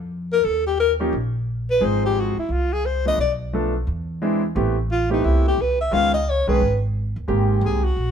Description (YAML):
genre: jazz, small-group swing and bop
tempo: 176 BPM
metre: 4/4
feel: swing 63% on 8ths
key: unclear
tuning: A4 = 439 Hz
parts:
  - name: upright bass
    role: bass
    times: 0.0-8.1 s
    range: Ab1 to F2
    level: -23 LUFS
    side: equal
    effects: none
  - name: breathy alto saxophone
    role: melody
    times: 0.3-8.1 s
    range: Eb4 to F5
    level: -21 LUFS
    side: left 2 dB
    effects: none
  - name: clear concert grand piano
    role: accompaniment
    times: 1.0-7.8 s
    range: Eb3 to B4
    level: -23 LUFS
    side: right 1 dB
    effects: none
room: light reverb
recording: band playing live in one room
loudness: -19 LUFS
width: side -8 dB against mid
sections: 0.0-7.3 A section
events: none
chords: 0.5 Eb5; 1.8 Ab6; 3.2 Bm7b5; 3.9 Eaug7; 4.5 Am9; 5.9 Db9; 7.3 Abmaj9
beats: 0.11 | 0.45 0.79 1.13 1.47 | 1.81 2.16 2.50 2.84 | 3.18 3.52 3.86 4.21 | 4.55 4.89 5.23 5.57 | 5.91 6.26 6.60 6.94 | 7.28 7.62 7.97